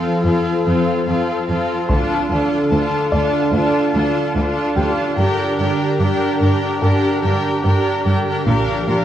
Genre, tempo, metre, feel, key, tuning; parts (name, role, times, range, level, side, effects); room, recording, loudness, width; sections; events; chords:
cinematic, hybrid orchestral and electronic film score; 73 BPM; 4/4; straight; D minor; A4 = 435 Hz
clear studio violin section; second line; 0.0-9.0 s; A4 to A5; -24 LUFS; left 3 dB
rich symphonic viola section; accompaniment; 0.0-9.0 s; C4 to G4; -21 LUFS; right 2 dB
phased analog pad; sustained chords; 0.0-9.0 s; D3 to Bb4; -20 LUFS; left 1 dB; phaser, chorus
felt-muted upright piano; texture; 0.0-9.0 s; G4 to C6; -29 LUFS; equal
rich studio cello section; bass; 0.2-9.0 s; D2 to Bb2; -20 LUFS; right 1 dB
taiko ensemble; drums; 1.9-3.5, 8.5-9.0 s; -24 LUFS; equal
wet scoring stage reverb, RT60 1.7 s; worn, warbling old tape, cassette tape, warbly pitch drift; -15 LUFS; side -11 dB against mid
0.0-9.0 A section
build-up 0.0-9.0
0.0 F; 1.9 Dm; 5.2 Gm; 8.5 Bb6